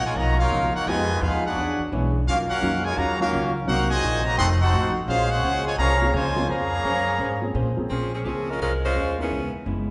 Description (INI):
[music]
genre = jazz, big band swing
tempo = 171 BPM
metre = 4/4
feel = swing 64% on 8ths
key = Bb minor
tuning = A4 = 442 Hz
[part]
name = brilliant trumpet section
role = melody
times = 0.0-7.5 s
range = Db4 to C6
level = -28 LUFS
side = equal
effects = none
[part]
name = muted trombone section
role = second line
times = 0.0-7.5 s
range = Bb2 to Gb4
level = -29 LUFS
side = equal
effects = none
[part]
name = vintage hollow-body jazz guitar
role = accompaniment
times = 0.0-9.9 s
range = B2 to C#5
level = -32 LUFS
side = equal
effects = none
[part]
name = upright bass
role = bass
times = 0.0-9.9 s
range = F1 to Bb2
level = -28 LUFS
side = equal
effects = none
[part]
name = warm baby grand piano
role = accompaniment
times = 0.9-3.9, 6.0-9.3 s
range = E3 to Bb4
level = -33 LUFS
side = equal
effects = none
[part]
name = edgy saxophone section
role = melody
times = 7.9-9.5 s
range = E3 to C5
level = -29 LUFS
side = equal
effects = none
[sound]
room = wet recital hall reverb, RT60 1.4 s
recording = recorded in a church or concert hall, nothing above 10.8 kHz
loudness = -23 LUFS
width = mono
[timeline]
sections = 0.0-7.9 A section; 7.9-9.9 B section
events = none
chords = 0.0 Bmaj9#11; 0.9 Fm7b5; 1.6 E13; 2.3 Ebm9; 3.7 Cm7b5; 4.4 F7b9; 5.1 Bbm9; 9.3 Dbm7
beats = 0.16 0.51 | 0.86 1.21 1.56 1.92 | 2.27 2.62 2.97 3.32 | 3.67 4.03 4.38 4.73 | 5.08 5.43 5.78 6.14 | 6.49 6.84 7.19 7.54 | 7.89 8.25 8.60 8.95 | 9.30 9.66